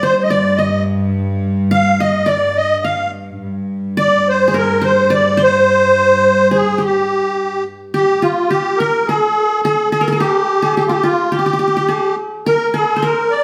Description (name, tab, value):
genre	arabic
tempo	106 BPM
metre	4/4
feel	straight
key	G maqam kurd, G maqam bayati from 7.9 s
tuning	A4 = 439 Hz
part	musette accordion	melody	0.0-13.4 s	F4 to F5	-16 LUFS	equal	none
part	qanun	second line	0.0-13.4 s	F4 to F5	-21 LUFS	equal	none
part	warm studio cello section	drone	0.0-8.0 s	G2	-22 LUFS	equal	none
room	wet large studio reverb, RT60 1.2 s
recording	band playing live in one room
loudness	-15 LUFS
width	mono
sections	0.0-7.9 A section; 7.9-13.4 B section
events	none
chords	none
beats	0.03 0.59 | 1.16 1.72 2.29 2.85 | 3.42 3.98 4.55 5.11 | 5.68 6.24 6.81 7.38 | 7.94 8.51 9.07 9.64 | 10.21 10.78 11.34 11.91 | 12.47 13.04